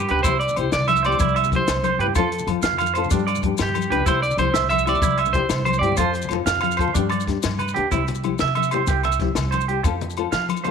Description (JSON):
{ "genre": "highlife guitar band", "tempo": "125 BPM (dotted quarters)", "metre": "12/8", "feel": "straight", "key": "C major", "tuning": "A4 = 440 Hz", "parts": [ { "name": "clean electric guitar", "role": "melody", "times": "0.0-6.3 s", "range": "G4 to E5", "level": "-23 LUFS", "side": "right 1 dB", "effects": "none" }, { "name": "clean electric guitar", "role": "arpeggios", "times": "0.0-10.7 s", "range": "D4 to F5", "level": "-24 LUFS", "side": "right 12 dB", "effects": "slapback echo" }, { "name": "upright bass", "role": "bass", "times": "0.0-10.7 s", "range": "C2 to F3", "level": "-26 LUFS", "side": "right 1 dB", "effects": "none" }, { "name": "congas", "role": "percussion", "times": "0.0-10.7 s", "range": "none", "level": "-29 LUFS", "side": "left 13 dB", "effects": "none" }, { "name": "maracas", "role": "percussion", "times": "0.0-10.6 s", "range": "none", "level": "-35 LUFS", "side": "left 12 dB", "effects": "none" }, { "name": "nylon-string guitar", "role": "accompaniment", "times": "0.1-10.7 s", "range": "F3 to A4", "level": "-28 LUFS", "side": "left 11 dB", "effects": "none" }, { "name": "compact cocktail drum kit", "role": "drums", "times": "0.1-10.7 s", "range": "hi-hat, kick drum, snare drum", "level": "-26 LUFS", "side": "left 2 dB", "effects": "none" }, { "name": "agogo bells", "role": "percussion", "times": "0.2-10.7 s", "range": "none", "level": "-32 LUFS", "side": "left 11 dB", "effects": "none" } ], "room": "light reverb", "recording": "1960s-style stereo with parts hard left and right", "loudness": "-18 LUFS", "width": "side -6 dB against mid", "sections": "0.0-7.9 A section; 7.9-10.7 B section", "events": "drum fill 7.1-7.9", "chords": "0.2 C; 2.2 F; 3.1 G; 4.1 C; 6.0 F; 7.0 G; 7.9 C; 9.8 F", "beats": "| 0.24 0.72 1.20 1.68 | 2.16 2.64 3.12 3.60 | 4.07 4.55 5.03 5.51 | 5.99 6.47 6.95 7.43 | 7.91 8.39 8.87 9.35 | 9.83 10.31" }